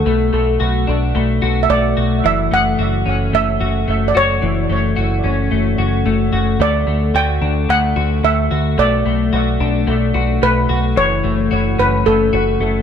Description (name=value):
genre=dream pop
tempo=110 BPM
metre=4/4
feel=straight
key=B minor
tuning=A4 = 439 Hz
part: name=steel pan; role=melody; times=0.0-12.8 s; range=A4 to G5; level=-18 LUFS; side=right 2 dB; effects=dub echo
part: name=semi-hollow electric guitar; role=arpeggios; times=0.0-12.8 s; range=E3 to F#4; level=-18 LUFS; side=left 5 dB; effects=analog chorus, dub echo
part: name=deep dub picked electric bass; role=bass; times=0.0-12.8 s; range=F#1 to D2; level=-18 LUFS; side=right 1 dB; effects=none
room=moderate plate reverb, RT60 2.5 s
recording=echo-heavy mix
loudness=-14 LUFS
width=side -8 dB against mid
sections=0.0-12.8 A section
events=none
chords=0.1 Bm7; 2.2 F#m7; 6.6 D; 8.8 Bm7; 11.0 F#m7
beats=| 0.06 0.60 1.15 1.69 | 2.24 2.78 3.33 3.87 | 4.42 4.96 5.51 6.05 | 6.60 7.15 7.69 8.24 | 8.78 9.33 9.87 10.42 | 10.96 11.51 12.05 12.60